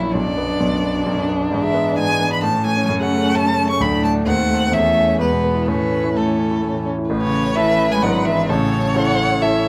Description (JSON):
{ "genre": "quick classical-period movement for piano quartet", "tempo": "130 BPM", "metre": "3/4", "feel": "straight", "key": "A major", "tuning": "A4 = 440 Hz", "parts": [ { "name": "rich cello", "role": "second line", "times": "0.0-9.6 s", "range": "C#3 to A3", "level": "-27 LUFS", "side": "equal", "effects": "none" }, { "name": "warm violin", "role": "second line", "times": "0.0-9.7 s", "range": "B3 to F#5", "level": "-26 LUFS", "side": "equal", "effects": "none" }, { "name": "clear concert grand piano", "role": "accompaniment", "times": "0.0-9.7 s", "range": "G#1 to B4", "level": "-22 LUFS", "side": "equal", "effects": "none" }, { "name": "rich violin", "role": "melody", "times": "0.1-9.6 s", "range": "A4 to C#6", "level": "-24 LUFS", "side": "equal", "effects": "none" } ], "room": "light reverb", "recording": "close, detailed microphones", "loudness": "-18 LUFS", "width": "mono", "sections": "0.0-7.1 A section; 7.1-9.7 A section", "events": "none", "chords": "0.1 Bm; 1.5 E7/G#; 2.4 A; 2.9 F#m; 3.8 D; 4.3 D#dim7; 4.7 A/E; 5.2 E; 5.7 A; 8.0 E7/G#; 8.5 A" }